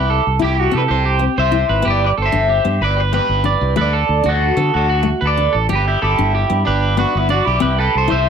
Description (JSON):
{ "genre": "highlife guitar band", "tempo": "125 BPM (dotted quarters)", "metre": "12/8", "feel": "straight", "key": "G major", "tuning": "A4 = 440 Hz", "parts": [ { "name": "electric guitar at the edge of break-up", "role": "melody", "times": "0.0-8.3 s", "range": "B3 to E5", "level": "-18 LUFS", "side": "left 1 dB", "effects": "phaser" }, { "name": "picked steel-string acoustic guitar", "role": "accompaniment", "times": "0.0-8.3 s", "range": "A3 to E4", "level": "-23 LUFS", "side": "left 9 dB", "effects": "none" }, { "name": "electric guitar at the edge of break-up", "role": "arpeggios", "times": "0.0-8.3 s", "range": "F#4 to D5", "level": "-20 LUFS", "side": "right 7 dB", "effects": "slapback echo" }, { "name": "fingered electric bass", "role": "bass", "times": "0.0-8.3 s", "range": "G1 to D3", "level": "-18 LUFS", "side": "equal", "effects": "none" } ], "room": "moderate studio reverb, RT60 0.7 s", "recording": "none", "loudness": "-14 LUFS", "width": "side -7 dB against mid", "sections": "0.0-8.3 A section", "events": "none", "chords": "0.0 C; 1.9 G; 3.8 D; 5.7 G; 7.6 C", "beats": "0.42 0.90 1.38 | 1.86 2.34 2.82 3.30 | 3.78 4.26 4.74 5.22 | 5.71 6.19 6.67 7.15 | 7.63 8.11" }